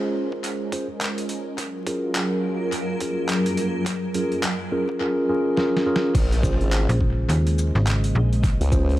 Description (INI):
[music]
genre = glitch hop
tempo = 105 BPM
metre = 4/4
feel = swing 60% on 16ths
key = Bb minor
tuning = A4 = 441 Hz
[part]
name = warm analog pad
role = sustained chords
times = 0.0-9.0 s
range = Db3 to Bb4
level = -31 LUFS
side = right 1 dB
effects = chorus, sidechain pumping
[part]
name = mellow tine electric piano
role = stabs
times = 0.0-9.0 s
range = Db4 to C5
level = -25 LUFS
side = equal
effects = vintage 12-bit sampler grit, sidechain pumping, low-pass filter, tape echo
[part]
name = granular cloud pad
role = texture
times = 0.0-9.0 s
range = Gb3 to Ab5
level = -30 LUFS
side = equal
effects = built-in reverb, sidechain pumping
[part]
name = electronic kick drum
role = drums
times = 0.3-8.9 s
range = none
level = -23 LUFS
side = equal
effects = overdrive, high-pass filter on kick, studio reverb
[part]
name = boom bap sampler-style drum kit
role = drums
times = 0.4-9.0 s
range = crash cymbal, handclaps, hi-hat, shaker, snare drum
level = -30 LUFS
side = equal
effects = overdrive, studio reverb, tape echo
[part]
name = formant-sweep wobble bass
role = bass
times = 6.1-9.0 s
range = Ab1 to Db2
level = -21 LUFS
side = equal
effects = chorus
[part]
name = slap-like FM bass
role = bass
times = 6.9-8.6 s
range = Ab1 to Eb2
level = -20 LUFS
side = equal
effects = tube saturation
[sound]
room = light reverb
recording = echo-heavy mix, vinyl crackle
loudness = -20 LUFS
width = side -15 dB against mid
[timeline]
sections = 0.0-6.2 A section; 6.2-9.0 B section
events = build-up 0.0-6.2; filter sweep on tine electric piano 0.0-6.2; drum fill 5.6-6.2; drop 6.2-9.0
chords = 0.0 Bbm7; 1.6 Gbmaj7; 6.2 Bbm7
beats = 0.44 1.01 | 1.58 2.15 2.73 3.30 | 3.87 4.44 5.01 5.58 | 6.15 6.72 7.30 7.87 | 8.44